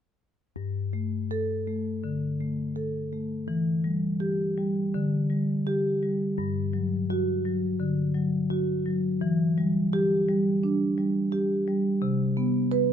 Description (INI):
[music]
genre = classical, contemporary piece for solo marimba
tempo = 84 BPM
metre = 4/4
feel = rubato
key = G major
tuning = A4 = 441 Hz
[part]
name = marimba with medium mallets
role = solo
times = 0.6-12.9 s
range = G2 to B4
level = -24 LUFS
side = equal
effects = none
[sound]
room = light reverb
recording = none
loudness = -24 LUFS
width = side -8 dB against mid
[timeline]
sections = 0.6-12.9 A section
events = none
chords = 0.6 Gsus2; 3.5 Em; 4.9 Dsus4; 6.4 G5; 9.2 Em7; 12.0 C5